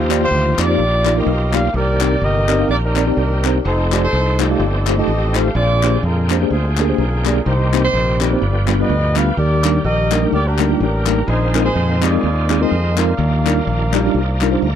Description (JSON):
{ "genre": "uptempo gospel", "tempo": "126 BPM", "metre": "4/4", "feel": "swing 57% on 8ths", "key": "Eb major", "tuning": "A4 = 436 Hz", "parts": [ { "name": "mellow horn section", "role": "melody", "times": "0.0-14.8 s", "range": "D4 to F5", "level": "-20 LUFS", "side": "equal", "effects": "none" }, { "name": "mellow tine electric piano", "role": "accompaniment", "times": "0.0-14.7 s", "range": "G2 to F5", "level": "-19 LUFS", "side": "equal", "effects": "medium stereo tremolo" }, { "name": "bright tonewheel organ", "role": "sustained chords", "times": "0.0-14.8 s", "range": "C3 to Bb5", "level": "-26 LUFS", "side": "right 2 dB", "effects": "fast rotary speaker, chorus vibrato" }, { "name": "modern bright fingered electric bass", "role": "bass", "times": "0.0-14.8 s", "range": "F1 to F2", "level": "-18 LUFS", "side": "equal", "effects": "none" }, { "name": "group handclap", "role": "percussion", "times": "0.1-14.5 s", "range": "none", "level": "-24 LUFS", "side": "left 14 dB", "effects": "none" } ], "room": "light reverb", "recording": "dry, close 1970s-style studio recording", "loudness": "-14 LUFS", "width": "side -9 dB against mid", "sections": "0.0-14.8 A section", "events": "tonewheel organ fill 14.4-14.8", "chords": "0.0 Ebmaj9; 1.7 Cm9; 3.7 F13; 5.6 Bb13; 7.5 Cm7; 8.4 G7; 9.4 Ebmaj7; 11.3 Bb9sus4; 13.2 Ebmaj9", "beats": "0.31 0.79 1.27 | 1.75 2.22 2.70 3.18 | 3.65 4.13 4.61 5.08 | 5.56 6.03 6.51 6.99 | 7.46 7.94 8.42 8.89 | 9.37 9.85 10.32 10.80 | 11.28 11.75 12.23 12.71 | 13.19 13.67 14.14 14.62" }